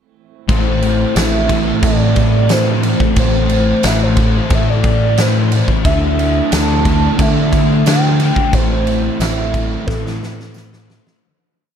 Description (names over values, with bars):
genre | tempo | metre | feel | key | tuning
rock, shoegaze and dream pop | 90 BPM | 4/4 | straight | A minor | A4 = 441 Hz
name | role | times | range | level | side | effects
pure sine lead | melody | 0.5-10.9 s | A4 to A5 | -21 LUFS | right 1 dB | chorus, phaser, digital delay
overdriven electric guitar | riff | 0.5-11.2 s | A2 to E4 | -21 LUFS | right 11 dB | reverse reverb
thick fuzz guitar | riff | 0.5-11.2 s | A2 to D4 | -19 LUFS | left 11 dB | distortion, ensemble chorus
growling fingered electric bass | bass | 0.5-11.0 s | A1 to D3 | -17 LUFS | equal | overdrive
huge arena drum kit | drums | 0.5-11.2 s | crash cymbal, kick drum, snare drum | -17 LUFS | equal | none
tambourine | percussion | 1.2-10.7 s | none | -31 LUFS | right 14 dB | none
room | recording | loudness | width
small room reverb | dark, warm production | -12 LUFS | side -8 dB against mid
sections
0.5-11.2 A section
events
fade-out 8.5-11.2; drum fill 9.9-11.2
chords
0.5 Am; 5.8 Dsus2; 8.5 Am